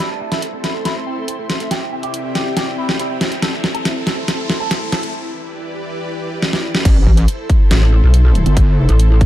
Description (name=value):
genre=heavy wobble dubstep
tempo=140 BPM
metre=4/4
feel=half-time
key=A minor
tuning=A4 = 440 Hz
part: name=electric guitar with an envelope filter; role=melody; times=0.0-5.1 s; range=A3 to A4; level=-26 LUFS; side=right 1 dB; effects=phaser, digital delay
part: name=supersaw pad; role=sustained chords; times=0.0-9.3 s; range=C3 to G5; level=-26 LUFS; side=equal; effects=sidechain pumping
part: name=dubstep drum kit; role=drums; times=0.0-9.3 s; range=crash cymbal, hi-hat, snare drum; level=-20 LUFS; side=equal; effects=overdrive
part: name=riser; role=sound effects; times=0.0-5.1 s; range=none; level=-32 LUFS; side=left 1 dB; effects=none
part: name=airy breathy pad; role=texture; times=0.0-9.3 s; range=C4 to C6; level=-28 LUFS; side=equal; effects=chorus, sidechain pumping
part: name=wobble bass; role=bass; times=6.9-8.9 s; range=G1 to A1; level=-13 LUFS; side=equal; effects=chorus, overdrive
part: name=electronic kick drum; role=drums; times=6.9-9.3 s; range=none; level=-12 LUFS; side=equal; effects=overdrive
part: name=pulsing pluck wobble bass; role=bass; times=7.7-9.3 s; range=A1 to B1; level=-10 LUFS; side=equal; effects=chorus, overdrive
room=little or no reverb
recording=dark, warm production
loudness=-14 LUFS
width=side -13 dB against mid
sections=0.0-6.9 A section; 6.9-9.3 B section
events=build-up 0.0-6.9; drum fill 0.0-5.1, 6.4-6.9; riser 0.0-5.1; break 5.1-6.9; drop 6.9-9.3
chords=0.0 Am; 1.7 C; 3.4 Am; 5.1 Em7; 6.9 Am